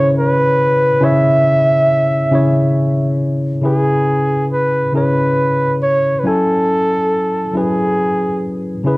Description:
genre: R&B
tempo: 46 BPM (dotted quarters)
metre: 6/8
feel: straight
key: unclear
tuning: A4 = 440 Hz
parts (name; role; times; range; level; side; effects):
- warm flugelhorn; melody; 0.0-9.0 s; G#4 to E5; -15 LUFS; right 1 dB; cassette tape
- tine electric piano; accompaniment; 0.0-9.0 s; C#3 to G#5; -16 LUFS; left 1 dB; cassette tape
room: light reverb, studio reverb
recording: home recording on cassette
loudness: -12 LUFS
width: side -21 dB against mid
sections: 0.0-3.6 A section; 3.6-9.0 B section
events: none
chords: 0.0 C#m7; 6.2 F#m9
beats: | 1.02 2.32 | 3.63 4.93 | 6.24 7.54 | 8.85

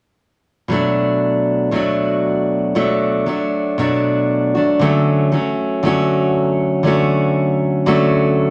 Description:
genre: folk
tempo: 117 BPM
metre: 4/4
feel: straight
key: B minor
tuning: A4 = 440 Hz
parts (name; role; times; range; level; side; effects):
- picked steel-string acoustic guitar; accompaniment; 0.7-8.5 s; B2 to F#4; -17 LUFS; equal; none
room: wet large studio reverb, RT60 0.9 s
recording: none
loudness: -17 LUFS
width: mono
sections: 0.7-8.5 A section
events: none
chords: 0.7 Bm7; 4.8 Dmaj7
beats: | 0.72 1.23 1.74 2.25 | 2.76 3.27 3.78 4.29 | 4.80 5.32 5.83 6.34 | 6.85 7.36 7.87 8.38

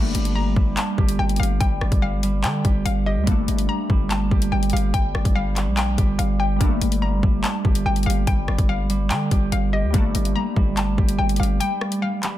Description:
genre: hip hop, drill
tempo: 144 BPM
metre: 4/4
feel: half-time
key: G minor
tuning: A4 = 444 Hz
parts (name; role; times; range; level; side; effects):
- glassy digital keys; accompaniment; 0.0-12.4 s; G3 to D4; -30 LUFS; left 2 dB; chorus, low-pass filter
- concert harp; arpeggios; 0.0-12.4 s; G3 to G4; -26 LUFS; right 4 dB; low-pass filter, tape echo
- distorted 808-style bass; bass; 0.0-11.6 s; G1 to D3; -23 LUFS; equal; distortion
- drill drum kit; drums; 0.1-12.3 s; handclaps, hi-hat, kick drum, rim click; -22 LUFS; equal; none
- hollow square pluck; second line; 0.4-12.4 s; Eb5 to Bb5; -29 LUFS; left 5 dB; chorus, tape echo
room: little or no reverb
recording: dense, heavily limited modern master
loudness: -18 LUFS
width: side -13 dB against mid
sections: 0.0-12.4 A section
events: break 11.6-12.4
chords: 0.0 Gmadd9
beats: 0.36 0.77 1.19 | 1.61 2.02 2.44 2.86 | 3.27 3.69 4.11 4.52 | 4.94 5.36 5.77 6.19 | 6.61 7.02 7.44 7.86 | 8.27 8.69 9.11 9.52 | 9.94 10.36 10.77 11.19 | 11.61 12.02

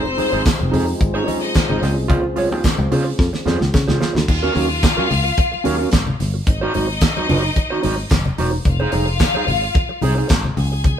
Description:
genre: disco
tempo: 110 BPM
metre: 4/4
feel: straight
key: unclear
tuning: A4 = 440 Hz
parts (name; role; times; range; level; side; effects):
- clear studio string section; second line; 0.0-11.0 s; C4 to Ab5; -23 LUFS; left 3 dB; none
- mellow electric guitar; accompaniment; 0.0-10.9 s; Db4 to Eb5; -22 LUFS; right 3 dB; harmonic tremolo
- mellow French horn section; sustained chords; 0.0-4.3 s; C3 to F4; -27 LUFS; left 1 dB; none
- picked electric bass; bass; 0.0-11.0 s; Fb1 to Db3; -21 LUFS; equal; none
- congas; percussion; 0.1-11.0 s; none; -28 LUFS; left 2 dB; none
- damped 70s drum kit; drums; 0.2-11.0 s; crash cymbal, handclaps, hi-hat, kick drum, snare drum; -19 LUFS; equal; none
- tambourine; percussion; 0.5-10.4 s; none; -35 LUFS; left 4 dB; none
room: moderate studio reverb, RT60 0.7 s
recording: band playing live in one room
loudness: -15 LUFS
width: side -9 dB against mid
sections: 0.0-4.3 A section; 4.3-11.0 B section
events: drum fill 3.2-4.3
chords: 0.0 Fm7; 1.8 Dbmaj7; 4.3 Ebm7; 6.5 Ab7; 8.7 Fm7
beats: 0.45 1.00 1.54 | 2.09 2.64 3.19 3.73 | 4.28 4.83 5.38 5.92 | 6.47 7.02 7.56 8.11 | 8.66 9.21 9.75 10.30 | 10.85

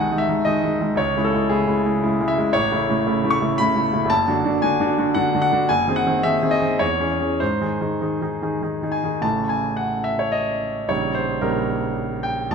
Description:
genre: classical, romantic character piece for solo piano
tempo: 96-118 BPM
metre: 3/4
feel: rubato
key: unclear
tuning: A4 = 440 Hz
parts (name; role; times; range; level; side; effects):
- clear concert grand piano; solo; 0.0-12.5 s; F#1 to C#6; -18 LUFS; equal; none
room: wet recital hall reverb, RT60 1.6 s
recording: none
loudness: -18 LUFS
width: side -6 dB against mid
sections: 0.0-9.2 A section; 9.2-12.5 A section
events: none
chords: 0.0 G#5; 1.0 C#m; 2.5 A; 4.1 D/F#; 5.7 G#7/F#; 6.8 C#m/E; 7.4 G#; 9.2 A; 10.9 D#7/A#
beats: 0.46 | 0.98 1.51 2.03 | 2.55 3.06 3.59 | 4.10 4.63 5.16 | 5.69 6.23 6.80 | 7.40 8.01 8.62 | 9.23 9.79 10.34 | 10.89 11.44 11.98 | 12.53

